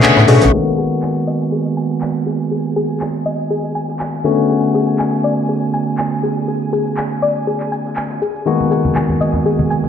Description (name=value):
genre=deep house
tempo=121 BPM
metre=4/4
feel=swing 54% on 16ths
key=G# minor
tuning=A4 = 441 Hz
part: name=soft round pluck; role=arpeggios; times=0.0-9.8 s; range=G#4 to G#5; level=-22 LUFS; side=left 2 dB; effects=chorus, cassette tape, dub echo
part: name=barky tine electric piano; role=stabs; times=0.0-9.9 s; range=D3 to G#4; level=-16 LUFS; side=moving between left 4 dB and right 6 dB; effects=auto-pan, digital delay
part: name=oversized low-tuned drum kit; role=drums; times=0.0-9.8 s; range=hi-hat, snare drum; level=-37 LUFS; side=right 2 dB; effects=none
part: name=punchy analog drum machine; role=drums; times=0.0-9.9 s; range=handclaps, hi-hat, shaker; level=-23 LUFS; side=right 1 dB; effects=none
part: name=congas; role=percussion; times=0.0-0.3, 8.6-9.9 s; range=none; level=-21 LUFS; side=left 1 dB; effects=none
part: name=hollow knocking FM bass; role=bass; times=0.2-0.5 s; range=A1 to B2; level=-10 LUFS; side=right 1 dB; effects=tube saturation
part: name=rich studio violin section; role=texture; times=0.5-9.9 s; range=G#5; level=-31 LUFS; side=right 2 dB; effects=none
room=moderate plate reverb, RT60 2.1 s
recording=played on a big sound system in a bare room, stone room reverb, low-pass filter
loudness=-14 LUFS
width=side -8 dB against mid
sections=0.5-9.9 A section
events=band accent 0.0; filter sweep 0.5-9.9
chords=0.0 Bm9; 0.5 G#m9; 4.2 Bm9; 8.5 G#m9